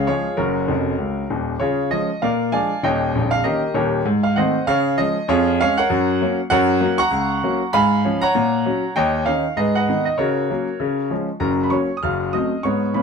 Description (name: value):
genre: jazz, stride piano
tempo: 196 BPM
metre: 4/4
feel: swing 59% on 8ths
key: Db major, F# major from 6.5 s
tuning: A4 = 440 Hz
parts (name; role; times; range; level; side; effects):
- clear grand piano; solo; 0.0-13.0 s; Bb0 to E#6; -17 LUFS; equal; none
room: light reverb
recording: close, detailed microphones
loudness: -17 LUFS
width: side -5 dB against mid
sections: 0.0-1.6 A section; 1.6-11.4 B section; 11.4-13.0 A section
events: grand piano fill 0.7-1.6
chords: 0.4 F#; 1.6 Db; 2.2 Bb7; 2.8 Eb7; 4.1 Ab7b9; 4.7 Db; 5.3 Db/F; 5.9 Gb; 6.5 F#; 7.7 C#7/G#; 8.4 F#/A#; 9.0 D#7; 9.6 G#m7; 10.2 F#/C#; 10.8 C#; 11.4 F#; 12.0 F#dim7